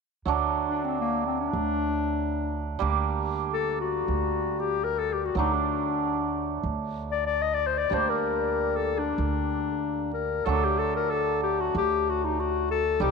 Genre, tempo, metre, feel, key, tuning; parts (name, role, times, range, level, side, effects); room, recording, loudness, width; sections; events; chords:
klezmer; free time; A4 = 440 Hz
hammered dulcimer; accompaniment; 0.3-13.1 s; F#3 to Eb4; -30 LUFS; right 11 dB
upright bass; bass; 0.3-13.1 s; C2 to D2; -32 LUFS; right 2 dB
warm clarinet; melody; 0.7-13.1 s; Bb3 to Eb5; -27 LUFS; left 9 dB
moderate plate reverb, RT60 3.5 s; 1960s-style stereo with parts hard left and right; -24 LUFS; side -4 dB against mid
0.3-10.5 A section; 10.5-13.1 B section
0.3 D; 2.8 Gm/D; 5.4 D; 7.9 Gm/D; 10.5 D